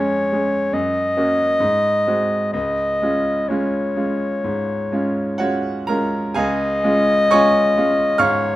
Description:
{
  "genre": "classical, romantic duo for clarinet and grand piano",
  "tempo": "60-72 BPM",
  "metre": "4/4",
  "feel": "rubato",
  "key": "Db major",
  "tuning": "A4 = 439 Hz",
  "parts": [
    { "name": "clear clarinet", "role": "melody", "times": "0.0-8.6 s", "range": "Db5 to Eb5", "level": "-19 LUFS", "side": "left 1 dB", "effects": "none" },
    { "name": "bright grand piano", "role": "accompaniment", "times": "0.0-8.6 s", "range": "Db2 to F6", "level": "-20 LUFS", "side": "right 1 dB", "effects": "none" }
  ],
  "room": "moderate large studio reverb, RT60 0.8 s",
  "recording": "none",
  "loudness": "-16 LUFS",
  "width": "side -16 dB against mid",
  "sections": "0.0-6.4 A section; 6.4-8.6 A section",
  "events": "none",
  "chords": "0.0 Db/F; 0.7 Ebm7/Gb; 1.6 Ab7; 2.5 Db"
}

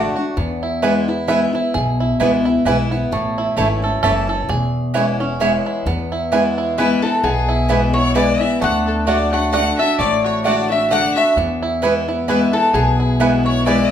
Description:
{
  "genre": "bluegrass",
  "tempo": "131 BPM",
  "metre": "3/4",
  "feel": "swing 55% on 8ths",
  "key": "E mixolydian",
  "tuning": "A4 = 440 Hz",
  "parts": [
    { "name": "bluegrass banjo", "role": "melody", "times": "0.0-13.9 s", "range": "E3 to E5", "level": "-23 LUFS", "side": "right 4 dB", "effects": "none" },
    { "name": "picked steel-string acoustic guitar", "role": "accompaniment", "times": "0.0-13.9 s", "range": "E2 to F#4", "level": "-20 LUFS", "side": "left 3 dB", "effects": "none" },
    { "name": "upright bass", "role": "bass", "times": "0.0-13.8 s", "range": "E1 to E2", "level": "-22 LUFS", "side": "equal", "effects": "none" },
    { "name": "mandolin", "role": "stabs", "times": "0.8-13.8 s", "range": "A3 to A5", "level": "-20 LUFS", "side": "right 4 dB", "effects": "none" },
    { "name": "lap resonator guitar", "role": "melody", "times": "6.8-13.9 s", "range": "G#4 to F#5", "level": "-20 LUFS", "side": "left 2 dB", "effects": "none" },
    { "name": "clear fiddle", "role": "second line", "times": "6.8-13.9 s", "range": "G#4 to F#5", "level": "-24 LUFS", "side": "left 4 dB", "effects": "none" }
  ],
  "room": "wet large studio reverb, RT60 0.8 s",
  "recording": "band playing live in one room",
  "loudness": "-15 LUFS",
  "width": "side -9 dB against mid",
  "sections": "0.0-5.9 A section; 5.9-13.9 B section",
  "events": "five-string banjo solo 0.0-5.9",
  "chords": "0.4 E; 3.1 A; 4.5 E6; 5.9 E; 8.6 D; 11.4 E"
}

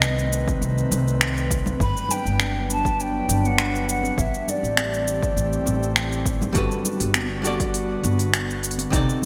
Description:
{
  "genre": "sunset chillout",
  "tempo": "101 BPM",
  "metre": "4/4",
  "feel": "straight",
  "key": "G major",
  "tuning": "A4 = 440 Hz",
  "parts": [
    { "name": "breathy mellow jazz flute", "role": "melody", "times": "0.0-6.3 s", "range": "D5 to B5", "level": "-30 LUFS", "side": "equal", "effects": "digital delay" },
    { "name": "airy breathy pad", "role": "sustained chords", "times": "0.0-9.3 s", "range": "D3 to B4", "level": "-30 LUFS", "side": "equal", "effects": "chorus" },
    { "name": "upright bass", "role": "bass", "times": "0.0-9.0 s", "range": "G1 to C2", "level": "-28 LUFS", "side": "equal", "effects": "none" },
    { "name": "deep house drum kit", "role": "drums", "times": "0.0-9.2 s", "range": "finger snaps, hi-hat, shaker", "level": "-27 LUFS", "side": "equal", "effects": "gated reverb" },
    { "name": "congas", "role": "percussion", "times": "0.0-9.3 s", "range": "none", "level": "-35 LUFS", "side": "equal", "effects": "none" },
    { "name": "electronic kick drum", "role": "drums", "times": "0.5-9.1 s", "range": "none", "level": "-28 LUFS", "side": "equal", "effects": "none" },
    { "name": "archtop guitar, miked and amplified", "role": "accompaniment", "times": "6.5-9.3 s", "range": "C3 to D5", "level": "-29 LUFS", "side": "equal", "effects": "delay" }
  ],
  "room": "moderate lush hall reverb, RT60 2.3 s",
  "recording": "bright 1980s-style digital production",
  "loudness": "-23 LUFS",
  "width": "mono",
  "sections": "0.0-9.3 A section",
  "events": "none",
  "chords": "0.0 Cm6; 1.8 Gmaj7; 4.2 Am7; 6.6 Gmaj7"
}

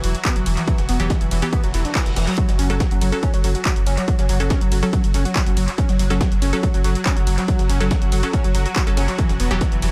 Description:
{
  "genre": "driving peak-time techno",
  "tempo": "141 BPM",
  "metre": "4/4",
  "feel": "straight",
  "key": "F# minor",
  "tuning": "A4 = 440 Hz",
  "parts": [
    { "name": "overdriven synth lead", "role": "riff", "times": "0.0-9.9 s", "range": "D3 to C#4", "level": "-28 LUFS", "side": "equal", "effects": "analog chorus, sidechain pumping, analog delay" },
    { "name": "saturated sub bass", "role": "bass", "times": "0.0-9.9 s", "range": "E1 to F#1", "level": "-24 LUFS", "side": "equal", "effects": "sidechain pumping, low-pass filter" },
    { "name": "swarming drone", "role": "drone", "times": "0.0-9.9 s", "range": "F#3 to F#4", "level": "-33 LUFS", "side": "equal", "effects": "built-in reverb, sidechain pumping" },
    { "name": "breakbeat sampler-style drum kit", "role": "drums", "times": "0.0-9.9 s", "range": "hi-hat, snare drum", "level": "-38 LUFS", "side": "equal", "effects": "none" },
    { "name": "techno drum kit", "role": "drums", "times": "0.0-9.9 s", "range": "handclaps, hi-hat, ride cymbal", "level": "-31 LUFS", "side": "equal", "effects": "overdrive, sidechain pumping on hats, sidechain pumping on cymbals, analog delay" },
    { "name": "electronic kick drum", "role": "drums", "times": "0.2-9.7 s", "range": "none", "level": "-22 LUFS", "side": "equal", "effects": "overdrive" },
    { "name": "wavetable chord stab", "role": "stabs", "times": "1.0-9.6 s", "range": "E3 to A4", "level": "-30 LUFS", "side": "equal", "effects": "sidechain pumping, analog delay" },
    { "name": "reverse cymbal", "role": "sound effects", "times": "1.7-2.4 s", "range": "none", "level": "-36 LUFS", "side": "equal", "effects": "none" }
  ],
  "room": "digital ambience",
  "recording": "echo-heavy mix",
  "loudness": "-19 LUFS",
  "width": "mono",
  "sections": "0.0-9.9 A section",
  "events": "reverse cymbal 1.7-2.4",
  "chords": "0.0 Em; 2.4 F#m; 9.2 Em"
}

